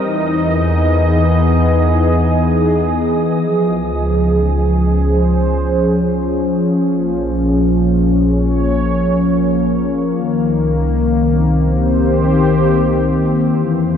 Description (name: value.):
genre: ambient.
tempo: 71 BPM.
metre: 4/4.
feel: straight.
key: unclear.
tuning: A4 = 441 Hz.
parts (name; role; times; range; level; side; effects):
warm analog pad; sustained chords; 0.0-14.0 s; Eb3 to Eb5; -14 LUFS; left 1 dB; chorus.
round analog bass; bass; 0.0-14.0 s; Bb1 to E2; -18 LUFS; equal; none.
wind-like tuned noise texture; texture; 0.0-3.4 s; Eb5 to Eb6; -30 LUFS; equal; built-in reverb.
room: wet huge ambient reverb, RT60 8.0 s.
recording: cassette tape.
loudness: -12 LUFS.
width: side -8 dB against mid.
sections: 0.0-3.4 A section; 3.4-14.0 B section.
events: none.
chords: 0.0 Emaj7; 3.4 Dbmaj7; 6.8 Bbm7; 10.2 Cm7.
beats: | 0.04 0.88 1.73 2.57 | 3.42 4.26 5.11 5.95 | 6.80 7.64 8.49 9.33 | 10.18 11.02 11.87 12.71 | 13.56.